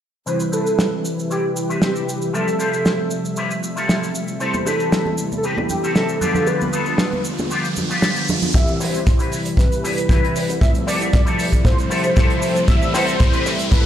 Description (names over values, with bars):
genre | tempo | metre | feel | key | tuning
nu-disco, nu disco | 116 BPM | 4/4 | straight | C major | A4 = 442 Hz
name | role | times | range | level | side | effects
wide unison lead | melody | 0.3-13.9 s | G4 to E5 | -24 LUFS | equal | ensemble chorus, ping-pong delay
mellow synth brass | accompaniment | 0.3-13.9 s | C3 to E5 | -23 LUFS | equal | chorus
electric guitar with an envelope filter | riff | 0.3-13.8 s | B3 to D5 | -26 LUFS | left 3 dB | ensemble chorus, low-pass filter
damped 70s drum kit | drums | 0.3-13.8 s | cabasa, hi-hat, snare drum | -24 LUFS | right 1 dB | high-pass filter on hats, high-pass filter on snare, high-pass filter on perc, high-pass filter on room
cabasa, congas and bongos | percussion | 4.4-8.5 s | none | -27 LUFS | right 3 dB | none
riser | sound effects | 5.7-13.9 s | none | -29 LUFS | equal | none
fingered electric bass with an envelope filter | bass | 8.5-13.8 s | F1 to C3 | -32 LUFS | equal | none
kick drum | drums | 8.5-13.8 s | none | -16 LUFS | equal | none
room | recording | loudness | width
light reverb | played on a big sound system in a bare room, stone room reverb | -16 LUFS | side -10 dB against mid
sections
0.3-8.5 A section; 8.5-13.9 B section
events
riser 5.7-8.5, 8.5-13.9; build-up 8.5-13.9; drum fill 8.5-13.9; filter sweep on clean electric guitar 8.5-13.9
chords
0.3 Cmaj7; 2.3 Fmaj9; 4.4 Am7; 6.2 G7; 8.5 Cmaj7; 10.6 Fmaj9; 12.7 Am7